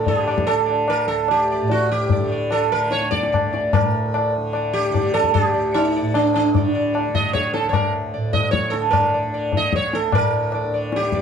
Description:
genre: indian classical, Hindustani.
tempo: 149 BPM.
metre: 4/4.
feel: straight.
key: unclear.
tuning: A4 = 440 Hz.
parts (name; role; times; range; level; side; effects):
sitar; melody; 0.0-11.2 s; D4 to Eb5; -20 LUFS; right 2 dB; none.
tanpura; drone; 0.0-11.2 s; D2 to D3; -26 LUFS; right 2 dB; none.
tabla; percussion; 0.1-11.2 s; none; -22 LUFS; left 4 dB; none.
room: moderate studio reverb, RT60 0.5 s.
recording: dark, warm production.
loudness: -17 LUFS.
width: side -7 dB against mid.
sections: 0.0-10.1 A section; 10.1-11.2 B section.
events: speeding up 0.0-11.2.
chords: none.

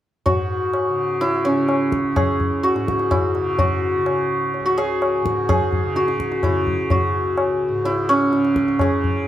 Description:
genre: indian classical, Hindustani.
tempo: 126 BPM.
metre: 7/4.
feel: straight.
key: unclear.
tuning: A4 = 440 Hz.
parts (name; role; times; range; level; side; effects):
santur; melody; 0.3-9.3 s; C#4 to G#4; -19 LUFS; equal; none.
tanpura; drone; 0.3-9.3 s; C#2 to C#3; -28 LUFS; right 2 dB; none.
tabla; percussion; 0.3-9.2 s; none; -23 LUFS; left 2 dB; none.
room: wet small room ambience, RT60 0.5 s.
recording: heard from further back in the room.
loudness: -17 LUFS.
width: side -12 dB against mid.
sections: 0.3-9.3 A section.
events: none.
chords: none.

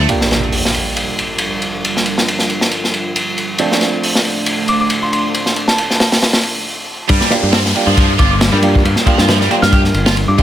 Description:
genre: breakbeat, breaks.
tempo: 137 BPM.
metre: 4/4.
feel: swing 55% on 16ths.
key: unclear.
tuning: A4 = 440 Hz.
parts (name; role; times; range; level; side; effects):
dark analog pad; sustained chords; 0.0-10.4 s; G3 to C5; -23 LUFS; equal; chorus, vintage 12-bit sampler grit, sidechain pumping.
tight distorted guitar; riff; 0.0-0.1, 7.1-10.4 s; F3 to G4; -20 LUFS; right 1 dB; distortion, tube saturation, dub echo.
picked electric bass; bass; 0.0-0.1, 7.1-10.4 s; G1 to G2; -15 LUFS; equal; none.
bright baby grand piano; stabs; 0.1-10.4 s; F3 to G4; -22 LUFS; right 4 dB; low-pass filter, dub echo.
crunchy breakbeat drum kit; drums; 0.1-10.4 s; hi-hat, kick drum, ride cymbal, snare drum; -14 LUFS; equal; high-pass filter on kick, high-pass filter on cymbals, high-pass filter on hats, high-pass filter on snare, high-pass filter on room.
impact and downlifter; sound effects; 0.1-1.8, 7.1-10.4 s; none; -22 LUFS; equal; none.
soft synth bell; melody; 4.7-10.4 s; A5 to F6; -22 LUFS; equal; chorus, phaser, telephone sound, dub echo.
room: light reverb.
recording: none.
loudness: -12 LUFS.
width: side -11 dB against mid.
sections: 0.1-7.1 A section; 7.1-10.4 B section.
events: impact 0.1-1.8; break 6.7-7.1; drop 7.1-10.4.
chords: 0.1 Gm7; 3.6 Dm7; 7.1 Gm7.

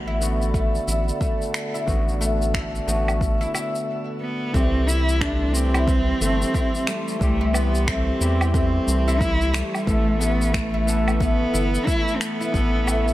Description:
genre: organic downtempo.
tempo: 90 BPM.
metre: 4/4.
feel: swing 60% on 16ths.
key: unclear.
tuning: A4 = 440 Hz.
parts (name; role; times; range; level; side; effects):
overdriven tine electric piano; accompaniment; 0.0-13.1 s; D3 to A4; -30 LUFS; left 2 dB; sidechain pumping, digital delay, shimmer reverb.
warbly tape-like pad; sustained chords; 0.0-13.1 s; G4 to C6; -34 LUFS; right 1 dB; chorus, built-in reverb, sidechain pumping, shimmer reverb.
oud; arpeggios; 0.0-13.1 s; A3 to E4; -28 LUFS; left 1 dB; digital delay, shimmer reverb.
round analog bass; bass; 0.0-13.1 s; G1 to E2; -23 LUFS; equal; sidechain pumping.
electronic shaker, finger snaps and woodblock; drums; 0.2-13.1 s; none; -30 LUFS; equal; overdrive.
electronic kick drum; drums; 0.5-12.7 s; none; -24 LUFS; equal; overdrive.
dark cello; melody; 4.2-13.1 s; G3 to E4; -24 LUFS; equal; tape echo, shimmer reverb.
room: light reverb, digital ambience.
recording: none.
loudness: -19 LUFS.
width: side -15 dB against mid.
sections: 0.0-4.5 A section; 4.5-13.1 B section.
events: stop 3.9-4.5.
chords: 0.0 Bm7/A; 4.5 C; 9.9 Asus2.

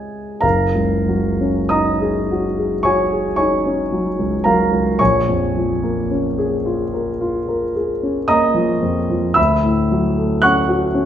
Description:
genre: classical, impressionist solo piano.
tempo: 44-60 BPM.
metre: 4/4.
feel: rubato.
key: F# major.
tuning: A4 = 439 Hz.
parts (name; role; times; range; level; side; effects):
warm concert grand piano; solo; 0.0-11.1 s; F#1 to F#6; -15 LUFS; equal; none.
room: moderate recital hall reverb, RT60 1.4 s.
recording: none.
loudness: -15 LUFS.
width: side -10 dB against mid.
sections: 0.4-11.1 A section.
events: none.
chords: 0.4 F#69; 5.0 A#m7; 9.4 Dmaj7.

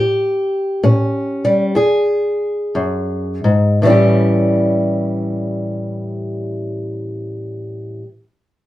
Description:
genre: blues.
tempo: 55-69 BPM.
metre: 4/4.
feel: swing 67% on 8ths.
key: A mixolydian.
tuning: A4 = 440 Hz.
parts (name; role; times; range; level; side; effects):
fingerpicked old ladder-braced acoustic guitar; accompaniment; 0.0-8.1 s; E2 to G#4; -15 LUFS; equal; none.
room: wet studio reverb, RT60 0.5 s.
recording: heard from further back in the room.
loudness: -15 LUFS.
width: side -15 dB against mid.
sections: 0.0-3.8 A section; 3.8-8.2 B section.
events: slowing down 0.0-3.8.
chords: 0.0 A7; 1.7 E; 3.8 A7.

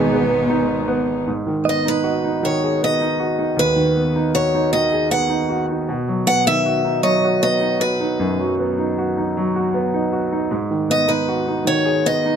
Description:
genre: acoustic folk-pop ballad.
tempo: 78 BPM.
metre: 3/4.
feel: straight.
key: G# minor.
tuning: A4 = 440 Hz.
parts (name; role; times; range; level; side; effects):
picked steel-string acoustic guitar; melody; 0.0-12.4 s; B4 to F#5; -20 LUFS; left 1 dB; none.
clear cello; second line; 0.0-0.8 s; B3; -24 LUFS; left 3 dB; none.
bright concert grand piano; accompaniment; 0.0-12.4 s; G#1 to G#4; -19 LUFS; right 1 dB; none.
warm chamber string section; sustained chords; 0.0-1.3 s; B2 to G#4; -26 LUFS; right 1 dB; none.
direct-recorded clean electric guitar; arpeggios; 0.0-2.9, 7.0-8.3 s; G#4 to D#5; -24 LUFS; right 6 dB; tremolo.
room: light reverb.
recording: close, detailed microphones.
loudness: -17 LUFS.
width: side -8 dB against mid.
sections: 0.0-1.3 A section; 1.3-12.4 B section.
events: none.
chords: 0.0 G#m; 1.3 G#m7; 5.9 B; 10.5 G#m7.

